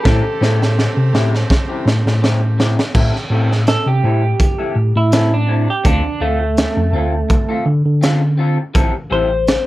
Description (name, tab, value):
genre	straight-eighth soul blues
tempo	83 BPM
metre	4/4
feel	swing 54% on 16ths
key	A minor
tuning	A4 = 440 Hz
part	electric guitar through a small old amp	melody	0.0-9.7 s	A3 to C5	-20 LUFS	right 1 dB	harmonic tremolo
part	bright horn section	sustained chords	0.0-2.9 s	A3 to G4	-29 LUFS	right 3 dB	none
part	electric guitar through a small old amp	stabs	0.0-9.3 s	G3 to A4	-23 LUFS	left 3 dB	phaser
part	tine electric piano	bass	0.1-9.6 s	A1 to D3	-16 LUFS	equal	medium stereo tremolo
part	crunchy breakbeat drum kit	drums	0.1-9.7 s	crash cymbal, hi-hat, kick drum, snare drum	-18 LUFS	equal	none
room	little or no reverb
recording	none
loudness	-13 LUFS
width	side -16 dB against mid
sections	0.0-3.0 A section; 3.0-9.7 B section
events	drum fill 0.1-3.0; clean electric guitar solo 3.0-9.7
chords	0.1 Am7; 5.9 Dm7; 8.7 Am7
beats	| 0.05 0.78 1.50 2.23 | 2.95 3.68 4.40 5.13 | 5.85 6.58 7.30 8.02 | 8.75 9.47